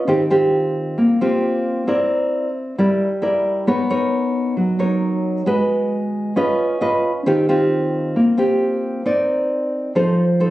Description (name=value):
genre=bossa nova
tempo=134 BPM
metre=4/4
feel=straight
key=unclear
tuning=A4 = 440 Hz
part: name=nylon-string guitar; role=solo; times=0.0-10.5 s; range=Eb3 to Eb5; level=-16 LUFS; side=equal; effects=none
room=light reverb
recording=recorded on a phone in the room, club reverb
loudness=-16 LUFS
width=side -16 dB against mid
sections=0.0-10.5 A section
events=none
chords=0.1 Eb69; 1.9 C9; 3.7 Bmaj9; 5.5 Abm7; 6.4 Db9; 7.3 Eb69; 9.0 Cm9; 9.9 F7